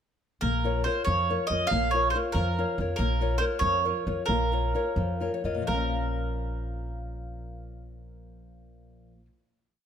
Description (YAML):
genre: italian folk, Italian serenade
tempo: 82-95 BPM (dotted quarters)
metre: 6/8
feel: straight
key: Bb minor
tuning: A4 = 439 Hz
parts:
  - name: mandolin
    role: melody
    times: 0.4-9.3 s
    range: Bb4 to F5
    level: -28 LUFS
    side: right 3 dB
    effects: none
  - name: nylon-string guitar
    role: accompaniment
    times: 0.4-9.4 s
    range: Bb2 to Eb5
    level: -31 LUFS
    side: left 4 dB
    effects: none
  - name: upright bass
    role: bass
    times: 0.4-9.3 s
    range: Bb1 to F2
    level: -30 LUFS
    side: equal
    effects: none
room: light reverb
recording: close, detailed microphones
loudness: -25 LUFS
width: side -8 dB against mid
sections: 0.4-5.7 A section; 5.7-8.6 final chord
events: slowing down 3.0-5.7; nylon-string guitar fill 5.0-5.7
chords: 0.4 Bbm